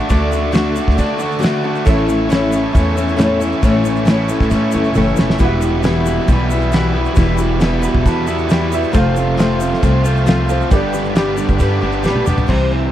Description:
folk rock and heartland rock; 136 BPM; 4/4; straight; G major; A4 = 440 Hz
bright upright piano; accompaniment; 0.0-12.5 s; G4 to B5; -28 LUFS; right 12 dB
picked steel-string acoustic guitar; accompaniment; 0.0-12.9 s; A2 to D5; -19 LUFS; left 3 dB
bright tonewheel organ; sustained chords; 0.0-12.9 s; G4 to D6; -29 LUFS; equal
crunchy overdriven guitar; riff; 0.0-12.9 s; E2 to G4; -19 LUFS; right 2 dB
upright bass; bass; 0.1-12.9 s; E1 to D3; -19 LUFS; equal
cloth-damped thuddy drum kit; drums; 0.1-12.6 s; crash cymbal, kick drum, snare drum, toms; -19 LUFS; equal
tube shaker; percussion; 0.1-12.4 s; -38 LUFS; left 15 dB
small room ambience; dry, close 1970s-style studio recording; -13 LUFS; side -12 dB against mid
0.0-12.5 A section
drum fill 5.0-5.4, 12.0-12.5; upright piano fill 7.6-8.9
0.0 D; 1.9 A; 5.4 Emadd9; 8.9 F; 10.7 G

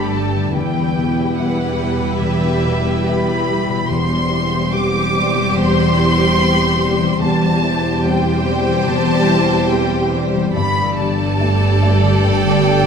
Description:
cinematic, emotional film score for orchestra; 72 BPM; 4/4; rubato; A4 = 440 Hz
warm symphonic violin section; melody; 0.0-12.9 s; E5 to D6; -21 LUFS; left 1 dB
rich studio violin section; second line; 0.0-12.9 s; G4 to D5; -23 LUFS; left 1 dB
rich symphonic viola section; accompaniment; 0.0-12.9 s; G3 to G4; -23 LUFS; right 3 dB
warm grand piano; accompaniment; 0.0-12.9 s; E2 to G4; -20 LUFS; left 2 dB
concert harp; arpeggios; 0.0-12.9 s; E2 to F#5; -23 LUFS; left 4 dB
rich symphonic cello section; bass; 0.0-12.9 s; E2 to G2; -23 LUFS; right 2 dB
warm symphonic double bass section; bass; 0.0-12.9 s; E1 to G1; -23 LUFS; right 3 dB
wet scoring stage reverb, RT60 1.8 s; -14 LUFS; side -6 dB against mid
0.0-12.9 A section
0.0 Gsus2; 0.6 Emadd9; 3.9 C/E; 10.5 Gsus2

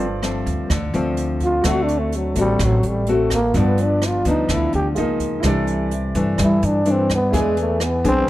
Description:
bossa nova; 126 BPM; 4/4; straight; A4 = 443 Hz
nylon-string guitar; accompaniment; 0.0-8.3 s; G2 to G#4; -22 LUFS; left 2 dB
warm concert grand piano; accompaniment; 0.0-8.3 s; E4 to E5; -30 LUFS; right 4 dB
upright bass; bass; 0.0-8.3 s; G1 to G2; -22 LUFS; equal
jazz brush drum kit; drums; 0.2-8.2 s; hi-hat, kick drum, rim click; -26 LUFS; right 1 dB
growling trombone; melody; 1.4-8.3 s; F#3 to G4; -21 LUFS; equal
light reverb; -17 LUFS; side -15 dB against mid
0.0-8.3 A section
trombone solo 0.0-8.3
0.0 G9sus4; 1.6 D7; 3.5 G7; 5.0 C#69; 5.4 C69; 7.3 E7

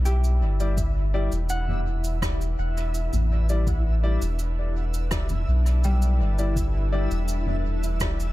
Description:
ambient dub; 83 BPM; 4/4; straight; E minor; A4 = 438 Hz
soft additive organ-like pad; sustained chords; 0.0-8.3 s; E3 to B4; -40 LUFS; left 1 dB; ensemble chorus, built-in reverb
concert harp; arpeggios; 0.0-8.3 s; G3 to F#5; -36 LUFS; left 1 dB; dub echo
soft dub sub bass; bass; 0.0-8.3 s; E1 to B1; -23 LUFS; equal
backwards swelling texture; texture; 0.0-8.3 s; E4 to E5; -36 LUFS; equal; built-in reverb
soft-mallet drum kit; drums; 0.1-8.3 s; cabasa, rim click, toms; -34 LUFS; left 1 dB; dub echo
clear upright piano; stabs; 0.6-7.1 s; G3 to D5; -34 LUFS; left 4 dB; dub echo
electronic kick drum; drums; 0.8-8.2 s; -29 LUFS; equal
studio reverb; echo-heavy mix; -22 LUFS; side -16 dB against mid
0.0-8.3 A section
fade-in on ambient pad 0.0-8.3
0.0 Em7

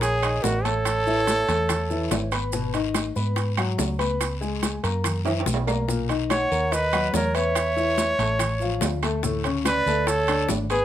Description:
Afro-Cuban jazz; 143 BPM; 4/4; straight; A4 = 440 Hz
warm trumpet; melody; 0.0-2.3, 6.3-10.8 s; F#4 to C#5; -24 LUFS; right 1 dB
breathy mellow concert flute; second line; 0.0-2.3, 6.3-10.8 s; A#4 to F#5; -28 LUFS; right 4 dB
warm baby grand piano; accompaniment; 0.0-10.8 s; A2 to B5; -28 LUFS; left 4 dB
hollow-body short-scale fingered electric bass; bass; 0.0-10.8 s; G#1 to G#2; -27 LUFS; right 1 dB
bongos; percussion; 0.0-10.7 s; -32 LUFS; left 8 dB
congas; percussion; 0.0-10.7 s; -33 LUFS; left 2 dB
guiro; percussion; 0.0-10.8 s; -38 LUFS; left 8 dB
maracas; percussion; 0.0-10.8 s; -36 LUFS; right 6 dB
timbales; percussion; 0.0-10.8 s; -30 LUFS; right 8 dB
claves; percussion; 0.2-10.5 s; -36 LUFS; right 10 dB
light reverb; -21 LUFS; side -11 dB against mid
0.0-10.8 A section
drum fill 5.3-5.9
0.0 F#69; 0.9 Aadd9; 2.5 G#m7; 4.2 C#5; 5.0 F#7; 5.9 Bmaj9; 7.6 E5; 8.4 Aaug; 9.2 D5

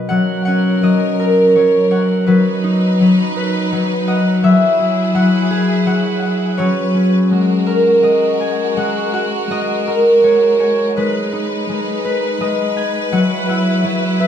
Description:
children's music, lullaby; 83 BPM; 3/4; rubato; A4 = 440 Hz
concert harp; melody; 0.0-14.3 s; B2 to G#5; -13 LUFS; equal; slapback echo
clear studio string section; sustained chords; 0.1-14.3 s; F#3 to B4; -21 LUFS; left 1 dB
light reverb; dark, warm production; -13 LUFS; side -9 dB against mid
0.1-14.3 A section
0.1 F#; 2.3 B/F#; 4.4 Eadd9; 6.6 F#sus4; 7.3 F#add9; 11.0 G#m; 13.1 Esus2

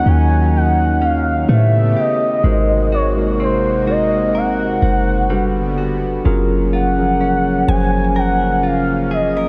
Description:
contemporary R&B; 63 BPM; 4/4; swing 54% on 16ths; A4 = 440 Hz
gliding portamento lead; melody; 0.0-9.5 s; C5 to Ab5; -21 LUFS; equal; chorus, tape echo
mellow tine electric piano; accompaniment; 0.0-9.5 s; Eb3 to Eb5; -22 LUFS; equal
warm analog pad; sustained chords; 0.0-9.5 s; C3 to G4; -26 LUFS; equal; chorus
direct-recorded clean electric guitar; arpeggios; 0.0-9.5 s; Eb3 to Bb4; -30 LUFS; equal; tape echo
mallet-like synth pluck; texture; 0.0-1.5, 7.7-9.5 s; Ab5 to Bb5; -41 LUFS; equal; chorus, tape echo
clean 808-style bass; bass; 0.1-9.5 s; Gb1 to A2; -20 LUFS; equal
moderate lush hall reverb, RT60 2.6 s; dreamy mix soaked in reverb; -16 LUFS; mono
0.0-9.5 A section
0.0 Ebm9; 1.5 A9; 2.4 Ab9; 5.3 Gmaj7; 6.3 Gbmaj7

